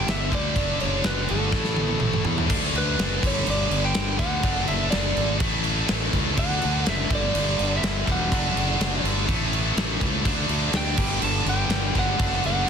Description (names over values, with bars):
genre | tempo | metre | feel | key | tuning
hard rock | 124 BPM | 4/4 | straight | unclear | A4 = 439 Hz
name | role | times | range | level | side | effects
lightly driven lead guitar | melody | 0.0-12.7 s | A4 to A5 | -29 LUFS | right 1 dB | digital delay
heavy high-gain guitar | riff | 0.0-12.7 s | G2 to D4 | -26 LUFS | left 1 dB | distortion
fuzz fingered electric bass | bass | 0.0-12.7 s | E1 to E2 | -27 LUFS | equal | overdrive
big rock drum kit | drums | 0.1-12.6 s | crash cymbal, kick drum, snare drum, toms | -25 LUFS | equal | none
room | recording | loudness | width
little or no reverb | dense, heavily limited modern master | -21 LUFS | side -7 dB against mid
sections
0.0-2.5 A section; 2.5-12.7 A section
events
drum fill 1.5-2.5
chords
0.0 G5; 0.6 D/F#; 1.5 A5; 2.5 D; 3.2 G5; 4.4 D/F#; 5.4 A; 6.4 D; 7.1 G5; 8.3 D/F#; 9.3 A; 10.3 D5; 11.0 G5